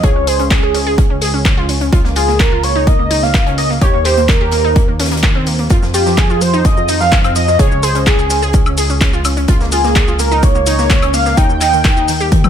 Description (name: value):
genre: progressive house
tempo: 127 BPM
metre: 4/4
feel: straight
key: unclear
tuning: A4 = 440 Hz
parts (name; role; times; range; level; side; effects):
- wide unison lead; melody; 0.0-12.5 s; G4 to G5; -16 LUFS; right 1 dB; wide subtle chorus, ping-pong delay
- wide unison pluck; arpeggios; 0.0-12.5 s; Eb3 to Ab4; -19 LUFS; right 1 dB; sidechain pumping, digital delay
- fat analog bass; bass; 0.0-12.5 s; Db2 to F2; -18 LUFS; equal; sidechain pumping
- electronic kick drum; drums; 0.0-12.4 s; none; -12 LUFS; equal; none
- loose indie drum kit; drums; 0.0-12.4 s; hi-hat, snare drum; -28 LUFS; left 2 dB; sidechain pumping on hats, high-pass filter on hats, high-pass filter on snare, high-pass filter on room
- big-room dance drum kit; drums; 0.3-12.5 s; handclaps, hi-hat, shaker, toms, woodblock; -19 LUFS; left 2 dB; none
room: little or no reverb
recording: none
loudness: -10 LUFS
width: side -9 dB against mid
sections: 0.0-12.5 A section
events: drum fill 12.3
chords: 0.0 Db5; 1.9 Bbm/Db; 3.8 Eb5; 5.7 Fm9; 7.6 Db5; 9.5 Bbm/Db; 11.4 Eb